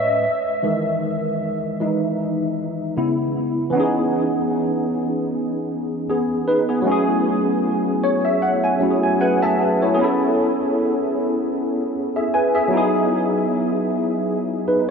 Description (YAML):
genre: R&B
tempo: 77 BPM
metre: 4/4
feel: swing 55% on 16ths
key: C# minor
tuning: A4 = 441 Hz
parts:
  - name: barky tine electric piano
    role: solo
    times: 0.0-14.9 s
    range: C#3 to A5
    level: -18 LUFS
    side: equal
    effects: ensemble chorus, diffuse ambient delay
room: wet huge ambient reverb, RT60 6.2 s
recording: dreamy mix soaked in reverb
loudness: -18 LUFS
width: side -6 dB against mid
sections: 0.0-3.7 A section; 3.7-14.9 B section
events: tine electric piano solo 0.0-3.7; tine electric piano fill 7.6-10.0, 14.7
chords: 0.2 Emaj7; 3.0 C#m7; 3.7 C#m9; 6.9 F#m9; 10.0 Amaj9; 12.7 Emaj9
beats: | 0.62 1.40 2.18 2.96 | 3.74 4.52 5.30 6.08 | 6.86 7.64 8.42 9.20 | 9.98 10.76 11.53 12.31 | 13.09 13.87 14.65